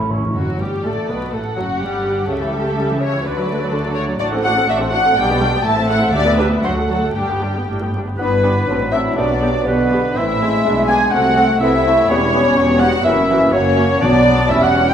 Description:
quick classical-period movement for symphony orchestra; 124 BPM; 2/4; rubato; D major, G major from 4.2 s; A4 = 441 Hz
mellow hollow small flute group; second line; 0.0-0.4, 8.2-14.9 s; B4 to C#6; -22 LUFS; equal
warm clarinet; second line; 0.0-0.1, 8.2-14.9 s; A#3 to E4; -25 LUFS; left 2 dB
muted studio viola section; accompaniment; 0.0-14.9 s; C#3 to B4; -23 LUFS; right 1 dB
warm bassoon; accompaniment; 0.0-0.1, 8.2-14.9 s; D3 to B3; -22 LUFS; right 2 dB
dark French horn section; sustained chords; 0.0-0.1, 8.2-14.9 s; F#3 to D4; -21 LUFS; left 1 dB
muted studio cello section; bass; 0.0-14.9 s; D2 to D3; -24 LUFS; right 2 dB
muted studio double bass section; bass; 0.0-14.9 s; E1 to D2; -24 LUFS; equal
timpani; percussion; 0.0-1.0, 6.1-6.6, 14.0-14.5 s; A2 to D3; -24 LUFS; equal
muted studio violin section; second line; 0.4-14.9 s; F#4 to A5; -19 LUFS; left 1 dB
muted studio violin section; melody; 0.8-14.9 s; B3 to G5; -24 LUFS; left 3 dB
clear oboe; second line; 8.2-14.9 s; B4 to G#5; -22 LUFS; right 1 dB
wet recital hall reverb, RT60 1.6 s; minimal, uncompressed stereo recording, vinyl crackle; -14 LUFS; side -8 dB against mid
0.3-8.2 A section; 8.2-14.9 B section
timpani fill 0.0-0.3
0.3 D; 1.3 F#m; 2.3 A7/C#; 3.3 D; 4.2 D7/A; 5.2 G/B; 5.7 Am; 6.1 G/D; 6.6 D; 7.1 G; 8.7 D7/A; 9.2 G/B; 10.2 Am; 10.7 E7/B; 11.1 Am/C; 12.1 C#m7b5/E; 13.0 F#7; 14.0 Bm

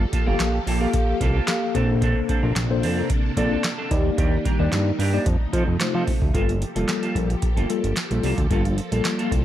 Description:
early-eighties boogie funk; 111 BPM; 4/4; straight; G minor; A4 = 441 Hz
phased string machine; sustained chords; 0.0-9.4 s; C3 to A4; -30 LUFS; equal; ensemble chorus, phaser
semi-hollow electric guitar; riff; 0.0-9.4 s; Bb3 to C5; -31 LUFS; right 3 dB; analog chorus
fat analog bass; bass; 0.0-9.4 s; F1 to F3; -23 LUFS; equal
booming analog drum machine; drums; 0.1-9.4 s; handclaps, hi-hat, kick drum, snare drum; -24 LUFS; equal
mellow tine electric piano; accompaniment; 0.3-9.4 s; G3 to F5; -26 LUFS; left 3 dB; medium stereo tremolo
little or no reverb; -20 LUFS; side -12 dB against mid
0.0-6.3 A section; 6.3-9.4 B section
0.0 Gm9; 1.8 Bbmaj9; 3.9 Ebmaj7; 5.3 F7; 6.3 Gm9

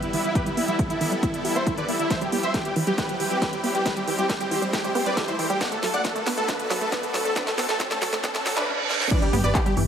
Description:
uplifting trance; 137 BPM; 4/4; straight; A4 = 440 Hz
dense compressed supersaw; melody; 0.0-9.7 s; D4 to F#5; -26 LUFS; equal; cassette tape, sidechain pumping, low-pass filter, digital delay
supersaw pad; sustained chords; 0.0-8.7 s; G3 to C5; -31 LUFS; equal; sidechain pumping
wide unison pluck; arpeggios; 0.0-9.8 s; E3 to G4; -30 LUFS; right 2 dB; sidechain pumping, dub echo
techno drum kit; drums; 0.0-9.9 s; crash cymbal, handclaps, hi-hat, snare drum, toms; -30 LUFS; equal; overdrive, high-pass filter on hats, studio reverb, high-pass filter on toms, high-pass filter on snare, high-pass filter on cymbals
riser and reverse cymbal; sound effects; 0.0-9.1 s; -32 LUFS; right 2 dB
electronic kick drum; drums; 0.4-9.6 s; -27 LUFS; equal; overdrive, studio reverb
analog pluck; second line; 9.1-9.7 s; G4 to D5; -31 LUFS; left 1 dB; chorus, vintage 12-bit sampler grit, sidechain pumping
solid FM bass; bass; 9.3-9.9 s; G1; -22 LUFS; equal; sidechain pumping
moderate digital room reverb, RT60 1.1 s, digital ambience; high-pass filter; -22 LUFS; side -8 dB against mid
0.0-9.1 A section
build-up 0.0-9.1; riser 0.0-9.1; filter sweep on synth arpeggio sound 0.0-9.1; filter sweep 0.0-9.1; drum fill 2.1-8.7, 8.9; reverse cymbal 8.2-9.1
0.0 Em; 2.1 Cmaj7; 5.6 D6; 9.1 G6

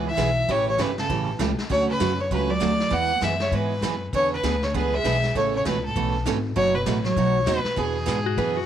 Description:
country, western swing; 198 BPM; 4/4; swing 60% on 8ths; A major; A4 = 440 Hz
rich fiddle; melody; 0.0-8.7 s; G#4 to F#5; -24 LUFS; left 1 dB
hollow-body jazz guitar; second line; 0.0-8.7 s; A2 to B3; -31 LUFS; right 6 dB
picked steel-string acoustic guitar; accompaniment; 0.0-8.6 s; B2 to A4; -27 LUFS; right 8 dB
upright bass; bass; 0.0-8.7 s; F#1 to G#2; -28 LUFS; left 2 dB
vintage brush drum kit; drums; 0.2-8.7 s; brushed snare drum, hi-hat, kick drum, snare drum; -33 LUFS; left 2 dB
clean lap steel guitar; second line; 8.3-8.7 s; F#4 to B4; -27 LUFS; left 10 dB
light reverb, small room ambience; 1960s-style stereo with parts hard left and right; -21 LUFS; side -10 dB against mid
0.0-8.7 A section
0.5 A7; 1.7 Dmaj7; 2.9 E; 4.1 E7; 5.3 Aadd9; 6.6 B7; 7.8 E7

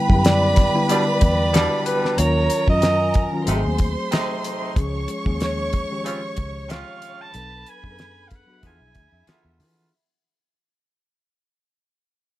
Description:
lush 1970s-style soul; 93 BPM; 4/4; swing 54% on 16ths; A4 = 440 Hz
warm studio violin section; second line; 0.0-9.9 s; E4 to C#6; -27 LUFS; right 1 dB
mellow reed electric piano; accompaniment; 0.0-9.9 s; D3 to A4; -26 LUFS; left 2 dB; fast tremolo
vibraphone with medium mallets; texture; 0.0-3.7 s; G5 to G#5; -29 LUFS; right 1 dB
vintage muted fingered electric bass; bass; 0.1-9.9 s; G#1 to E3; -23 LUFS; equal
damped 70s drum kit; drums; 0.1-9.8 s; hi-hat, kick drum, snare drum; -20 LUFS; equal
breathy alto saxophone; melody; 0.3-9.6 s; B4 to A5; -24 LUFS; right 1 dB
warm horn section; stabs; 0.9-9.9 s; B2 to F4; -27 LUFS; right 1 dB
light reverb; -18 LUFS; side -15 dB against mid
0.0-9.9 A section
fade-out 0.0-9.9
0.0 Em7; 2.2 D#m9; 3.5 G#7b9; 4.8 C#maj7; 7.3 Bm7; 8.6 E7b9

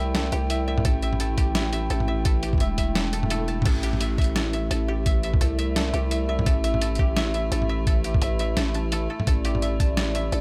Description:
half-time drum and bass; 171 BPM; 4/4; swing 58% on 16ths, half-time; A minor; A4 = 440 Hz
dark analog pad; sustained chords; 0.0-10.4 s; A3 to G5; -34 LUFS; equal; chorus, vintage 12-bit sampler grit, sidechain pumping
koto; arpeggios; 0.0-10.4 s; G4 to A5; -35 LUFS; equal; dub echo
growling 808-style bass; bass; 0.0-10.4 s; E1 to C2; -28 LUFS; equal
metallic inharmonic drone; texture; 0.0-10.4 s; E4; -40 LUFS; equal; chorus, built-in reverb
boom bap sampler-style drum kit; drums; 0.1-10.4 s; crash cymbal, hi-hat, snare drum, toms; -31 LUFS; equal
electronic kick drum; drums; 0.9-9.9 s; -25 LUFS; equal
swell; sound effects; 3.1-3.7 s; -41 LUFS; equal
little or no reverb; -24 LUFS; mono
0.0-10.4 A section
swell 3.1-3.7
0.0 A5

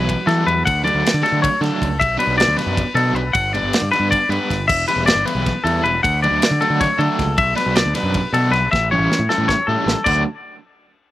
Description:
math rock and midwest emo; 313 BPM (eighths); 7/8; straight; D major; A4 = 445 Hz
twelve-string electric guitar; accompaniment; 0.0-0.7 s; F#3; -29 LUFS; right 6 dB; harmonic tremolo, slapback echo
twangy electric guitar; arpeggios; 0.0-10.2 s; A4 to F#5; -18 LUFS; left 2 dB; slapback echo
raw garage guitar; riff; 0.0-10.2 s; B2 to F#4; -23 LUFS; right 1 dB; overdrive, tremolo
growling fingered electric bass; bass; 0.0-10.2 s; E1 to E3; -22 LUFS; equal; overdrive
modern studio drum kit; drums; 0.1-10.1 s; crash cymbal, kick drum, ride cymbal, snare drum; -23 LUFS; right 1 dB
little or no reverb; recorded outdoors, with no room sound; -15 LUFS; side -15 dB against mid
0.0-10.1 A section; 10.1-11.1 B section
drum fill 8.7-10.1
0.0 Emadd9; 0.7 Dmaj7; 2.0 Bm7; 3.3 Gmaj7; 4.7 Em7; 6.0 Dmaj7; 7.4 Bm7; 8.7 A7; 10.1 D

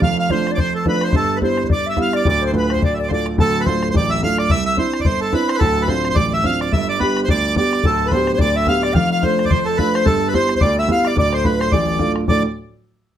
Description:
celtic folk, Celtic reel; 216 BPM; 4/4; swing 57% on 8ths; D dorian; A4 = 440 Hz
accordion; melody; 0.0-12.4 s; A4 to F5; -20 LUFS; right 2 dB; slapback echo
wooden flute; second line; 0.0-3.3, 7.8-12.4 s; A4 to G5; -22 LUFS; left 5 dB
warm grand piano; accompaniment; 0.0-12.4 s; D1 to A4; -19 LUFS; right 2 dB
bodhran; percussion; 0.0-12.4 s; -20 LUFS; left 2 dB
light reverb; -15 LUFS; side -10 dB against mid
0.0-3.4 A section; 3.4-12.3 A section
0.0 Dm/F; 1.1 G6; 2.3 Dm; 4.5 Cadd9; 5.6 Dm7; 6.7 G; 8.9 Dm/F; 10.1 G6; 11.2 Dm

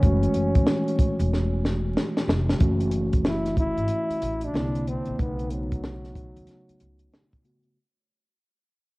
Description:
hip hop, jazz-hop; 93 BPM; 4/4; swing 62% on 16ths; F# minor; A4 = 438 Hz
breathy trombone; melody; 0.0-7.4 s; F#3 to E4; -29 LUFS; equal; low-pass filter, cassette tape, tape echo
mellow tine electric piano; accompaniment; 0.0-7.8 s; C#3 to F#4; -28 LUFS; equal; fast stereo tremolo, low-pass filter, cassette tape
upright bass; bass; 0.0-7.1 s; E1 to D#2; -28 LUFS; equal; tube saturation
compact cocktail drum kit; drums; 0.0-7.8 s; hi-hat, kick drum, snare drum; -24 LUFS; equal
light reverb, small room ambience; home recording on cassette, vinyl crackle; -22 LUFS; side -23 dB against mid
0.0-2.6 A section; 2.6-7.8 B section
drum fill 1.3-2.6; fade-out 2.6-7.8; filter sweep 2.6-7.8
0.0 F#m9; 2.6 F#m7; 4.5 C9; 5.2 B9

